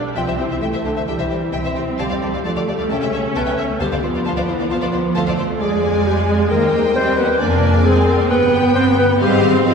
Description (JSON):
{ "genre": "classical, dramatic, fast romantic movement for symphony orchestra", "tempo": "133 BPM", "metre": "4/4", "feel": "straight", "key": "unclear", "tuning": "A4 = 440 Hz", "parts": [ { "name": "dark clarinet", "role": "second line", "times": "0.0-9.7 s", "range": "D4 to C5", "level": "-20 LUFS", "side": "left 2 dB", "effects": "none" }, { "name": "warm studio viola section", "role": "accompaniment", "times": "0.0-9.7 s", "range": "G3 to D4", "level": "-22 LUFS", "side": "right 2 dB", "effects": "none" }, { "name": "concert harp", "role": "arpeggios", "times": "0.0-9.7 s", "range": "F2 to F6", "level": "-25 LUFS", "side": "left 4 dB", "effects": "none" }, { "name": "warm symphonic cello section", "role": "bass", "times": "0.0-9.7 s", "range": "D3 to C4", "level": "-22 LUFS", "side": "right 3 dB", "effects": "none" }, { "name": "dark symphonic violin section", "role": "melody", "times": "0.2-9.7 s", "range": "C5 to A5", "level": "-28 LUFS", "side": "left 2 dB", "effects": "none" }, { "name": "warm symphonic violin section", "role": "second line", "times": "0.2-9.7 s", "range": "G4 to G5", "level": "-26 LUFS", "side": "left 3 dB", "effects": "none" }, { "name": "warm symphonic double bass section", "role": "bass", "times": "0.2-9.7 s", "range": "G1 to F2", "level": "-23 LUFS", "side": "right 1 dB", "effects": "none" } ], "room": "wet concert hall reverb, RT60 2.3 s", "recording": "heard from further back in the room", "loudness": "-15 LUFS", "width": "side -6 dB against mid", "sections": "0.0-9.7 A section", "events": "none", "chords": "0.2 C; 2.0 Dm; 2.9 A7/C#; 3.8 Dm7; 5.6 Ddim/F; 6.5 Cm/Eb; 7.4 Dm7b5/F; 8.3 G; 9.2 Ab6", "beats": "| 0.17 0.62 1.08 1.54 | 2.00 2.46 2.91 3.36 | 3.81 4.26 4.71 5.17 | 5.61 6.07 6.51 6.96 | 7.41 7.86 8.30 8.76 | 9.21 9.66" }